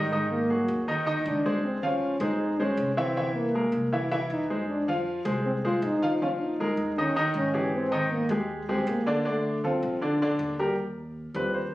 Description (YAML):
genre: Afro-Cuban jazz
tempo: 158 BPM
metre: 4/4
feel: straight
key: unclear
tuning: A4 = 440 Hz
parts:
  - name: breathy trombone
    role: melody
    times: 0.0-10.6 s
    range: G3 to F4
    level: -28 LUFS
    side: equal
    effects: none
  - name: clear baby grand piano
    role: accompaniment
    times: 0.0-11.7 s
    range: D3 to F5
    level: -27 LUFS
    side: equal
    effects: none
  - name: upright bass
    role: bass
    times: 0.0-11.7 s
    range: Ab1 to Ab2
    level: -37 LUFS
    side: equal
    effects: none
room: moderate club reverb, RT60 0.5 s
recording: recorded on a phone in the room, studio reverb, nothing above 10.7 kHz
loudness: -25 LUFS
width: side -16 dB against mid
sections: 0.0-10.8 A section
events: none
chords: 0.1 Ab7sus2; 1.6 Dbmaj9; 3.2 C7alt; 4.7 Fm7; 6.2 Bb5; 7.0 Eb7b9; 7.7 Abmaj7; 9.3 Dm7; 10.0 Bb; 10.8 Eb69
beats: | 0.12 0.50 0.88 1.26 | 1.64 2.02 2.40 2.78 | 3.16 3.54 3.92 4.30 | 4.68 5.07 5.45 5.83 | 6.21 6.59 6.97 7.35 | 7.73 8.11 8.49 8.87 | 9.26 9.64 10.02 10.40 | 10.78 11.16 11.54